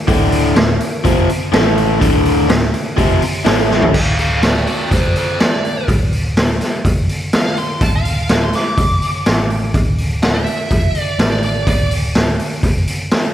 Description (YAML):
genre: blues rock power trio and southern rock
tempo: 124 BPM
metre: 4/4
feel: straight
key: unclear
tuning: A4 = 435 Hz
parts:
  - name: biting overdriven guitar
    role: riff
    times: 0.1-3.9 s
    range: D2 to A3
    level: -16 LUFS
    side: left 1 dB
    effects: slapback echo
  - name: vintage muted picked electric bass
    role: bass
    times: 0.1-12.9 s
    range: D1 to A1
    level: -19 LUFS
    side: equal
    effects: none
  - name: raw garage drum kit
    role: drums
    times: 0.1-13.2 s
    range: crash cymbal, hi-hat, kick drum, snare drum, toms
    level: -15 LUFS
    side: equal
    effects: none
  - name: smooth overdriven lead guitar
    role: melody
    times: 3.9-11.9 s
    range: F#4 to D6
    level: -21 LUFS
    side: right 1 dB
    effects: slapback echo
room: light reverb, small room ambience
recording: none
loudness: -13 LUFS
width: side -11 dB against mid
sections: 0.0-4.0 A section; 4.0-13.3 B section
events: drum fill 3.7; lead electric guitar solo 4.0-13.3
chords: 0.0 D5; 1.5 A5; 2.0 D5; 3.5 A5; 4.0 N.C.; 9.3 Asus4; 9.7 Dmadd9; 11.2 Asus4; 11.7 Dm